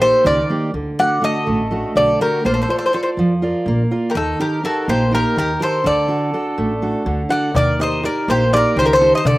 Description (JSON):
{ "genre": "greek folk, Greek bouzouki band", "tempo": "246 BPM (eighths)", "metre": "7/8", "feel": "straight", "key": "unclear", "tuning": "A4 = 440 Hz", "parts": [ { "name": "Greek bouzouki", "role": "melody", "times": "0.0-9.4 s", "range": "A4 to F#5", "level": "-17 LUFS", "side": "equal", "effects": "none" }, { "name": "bowl-back mandolin", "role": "second line", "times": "0.0-9.4 s", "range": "Eb4 to D5", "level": "-26 LUFS", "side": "left 1 dB", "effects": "slapback echo" }, { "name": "fingerpicked steel-string acoustic guitar", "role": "accompaniment", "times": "0.0-9.4 s", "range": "D3 to D5", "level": "-20 LUFS", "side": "right 2 dB", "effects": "slapback echo" }, { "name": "upright bass", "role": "bass", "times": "0.0-9.4 s", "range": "A1 to F2", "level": "-23 LUFS", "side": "equal", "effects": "none" }, { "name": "darbuka", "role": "percussion", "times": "7.5-9.4 s", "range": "none", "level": "-21 LUFS", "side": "left 2 dB", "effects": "none" } ], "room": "little or no reverb", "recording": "recorded outdoors, with no room sound", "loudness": "-15 LUFS", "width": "side -18 dB against mid", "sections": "0.0-7.6 A section; 7.6-9.4 B section", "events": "none", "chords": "0.0 Eb; 0.7 D; 2.4 Bb; 4.2 Eb; 5.9 D; 7.6 Eb" }